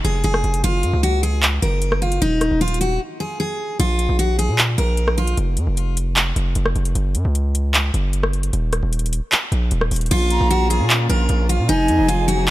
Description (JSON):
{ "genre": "hip hop, trap", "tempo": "152 BPM", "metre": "4/4", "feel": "half-time", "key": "Bb minor", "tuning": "A4 = 444 Hz", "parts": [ { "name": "picked steel-string acoustic guitar", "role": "melody", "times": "0.0-5.4, 10.1-12.5 s", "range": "Eb4 to Bb4", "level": "-21 LUFS", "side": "left 1 dB", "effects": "none" }, { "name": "distorted 808-style bass", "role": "bass", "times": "0.0-12.5 s", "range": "Eb1 to Bb2", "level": "-19 LUFS", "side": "equal", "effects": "distortion" }, { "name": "trap drum kit", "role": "drums", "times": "0.0-12.5 s", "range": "crash cymbal, handclaps, hi-hat, rim click", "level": "-22 LUFS", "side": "equal", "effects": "none" }, { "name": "dark symphonic string section", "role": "sustained chords", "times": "10.1-12.5 s", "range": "F3 to Ab4", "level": "-25 LUFS", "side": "left 1 dB", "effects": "none" }, { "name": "breathy jazz flute", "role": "second line", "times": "10.3-12.4 s", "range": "Ab5 to Bb5", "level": "-25 LUFS", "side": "right 4 dB", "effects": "ping-pong delay" } ], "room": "little or no reverb", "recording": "none", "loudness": "-17 LUFS", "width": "side -16 dB against mid", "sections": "0.0-10.1 A section; 10.1-12.5 B section", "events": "break 3.0-3.8", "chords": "0.0 Fm; 0.6 Gb; 2.2 Ebsus4; 3.8 Bb5; 5.4 N.C.; 7.0 Gb5; 8.5 Eb5; 10.1 Bbm; 11.7 Fm7", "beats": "0.24 | 0.64 1.03 1.43 1.82 | 2.22 2.61 3.00 3.40 | 3.79 4.19 4.58 4.98 | 5.37 5.77 6.16 6.56 | 6.95 7.35 7.74 8.14 | 8.53 8.93 9.32 9.72 | 10.11 10.51 10.90 11.29 | 11.69 12.08 12.48" }